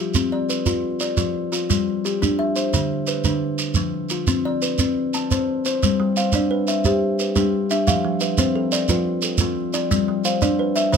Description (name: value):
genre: southern african traditional, mbira-style interlocking cycle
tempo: 117 BPM (dotted quarters)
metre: 12/8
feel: straight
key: G mixolydian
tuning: A4 = 442 Hz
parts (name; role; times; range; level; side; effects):
- kalimba; arpeggios; 0.0-11.0 s; D3 to A5; -21 LUFS; left 3 dB; none
- shekere; percussion; 0.1-11.0 s; none; -23 LUFS; right 5 dB; none
- kalimba; arpeggios; 6.0-11.0 s; F3 to F5; -24 LUFS; right 6 dB; none
room: little or no reverb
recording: close, detailed microphones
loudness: -19 LUFS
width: side -6 dB against mid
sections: 0.0-5.8 A section; 5.8-11.0 B section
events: none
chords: 0.0 F5; 1.7 G5; 2.7 Bm/D; 3.8 F5; 4.8 Amadd9/C; 5.8 G; 7.9 F; 9.9 G